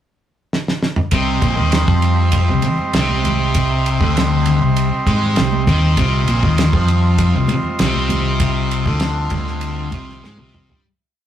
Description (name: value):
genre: psychedelic rock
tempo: 99 BPM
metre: 4/4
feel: straight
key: C minor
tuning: A4 = 440 Hz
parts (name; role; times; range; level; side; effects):
- damped 70s drum kit; drums; 0.5-10.8 s; kick drum, ride cymbal, snare drum, toms; -20 LUFS; equal; none
- combo organ; sustained chords; 1.1-10.8 s; G3 to Eb5; -22 LUFS; right 2 dB; none
- thick fuzz guitar; riff; 1.1-10.8 s; Bb2 to Ab3; -19 LUFS; left 1 dB; distortion, phaser
- fingered electric bass; bass; 1.1-10.8 s; Bb1 to Ab2; -19 LUFS; equal; none
- congas; percussion; 1.6-10.7 s; none; -27 LUFS; left 1 dB; none
room: moderate studio reverb, RT60 0.6 s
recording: rough rehearsal-room recording, tube saturation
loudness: -14 LUFS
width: side -10 dB against mid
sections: 0.0-1.1 pickup bar; 1.1-10.8 riff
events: drum fill 0.5-1.1, 10.2-10.8; fade-out 8.4-10.8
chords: 0.0 N.C.; 1.1 Cm